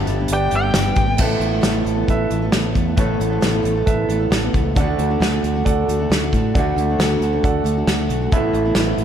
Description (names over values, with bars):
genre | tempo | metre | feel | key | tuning
folk rock and heartland rock | 135 BPM | 4/4 | straight | unclear | A4 = 440 Hz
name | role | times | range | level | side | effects
picked steel-string acoustic guitar | accompaniment | 0.0-9.0 s | G2 to A4 | -26 LUFS | left 5 dB | slapback echo
warm grand piano | accompaniment | 0.0-9.0 s | G4 to F#5 | -28 LUFS | right 4 dB | slapback echo
electric guitar through a small old amp | riff | 0.0-9.0 s | G2 to A4 | -22 LUFS | right 3 dB | wide subtle chorus, slapback echo
fingered electric bass | bass | 0.0-9.0 s | G1 to A2 | -22 LUFS | equal | none
soft brush drum kit | drums | 0.1-9.0 s | crash cymbal, hi-hat, kick drum, snare drum | -20 LUFS | equal | none
nasal lead guitar with a parked wah | melody | 0.3-1.2 s | G5 | -23 LUFS | left 2 dB | overdrive, analog delay
tambourine | percussion | 0.8-0.9 s | none | -40 LUFS | left 7 dB | none
room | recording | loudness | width
moderate lush hall reverb, RT60 1.6 s, small room ambience | big arena sound | -16 LUFS | side -9 dB against mid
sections
0.0-1.2 A section; 1.2-9.0 B section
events
lead electric guitar solo 0.0-1.2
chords
0.0 G; 1.2 Asus2; 4.8 D; 8.3 Asus2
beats
0.31 0.76 | 1.20 1.64 2.09 2.53 | 2.98 3.42 3.87 4.31 | 4.76 5.20 5.65 6.09 | 6.54 6.98 7.43 7.87 | 8.32 8.77